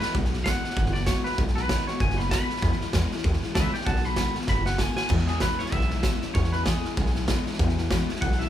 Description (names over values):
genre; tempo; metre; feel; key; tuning
rockabilly; 193 BPM; 4/4; swing 59% on 8ths; E major; A4 = 440 Hz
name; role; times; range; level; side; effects
twangy electric guitar; melody; 0.0-8.5 s; G#4 to B5; -31 LUFS; equal; none
picked steel-string acoustic guitar; accompaniment; 0.0-8.5 s; E2 to F#4; -32 LUFS; left 4 dB; none
upright bass; bass; 0.0-8.5 s; F#1 to E2; -27 LUFS; equal; none
raw garage drum kit; drums; 0.0-8.4 s; crash cymbal, hi-hat, kick drum, snare drum; -26 LUFS; right 1 dB; none
room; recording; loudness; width
light reverb; band playing live in one room; -23 LUFS; side -11 dB against mid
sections
0.0-5.1 A section; 5.1-8.5 B section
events
drum fill 4.5-5.1; clean electric guitar solo 5.1-8.5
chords
0.1 B6; 2.6 E6; 3.9 B6; 5.1 E6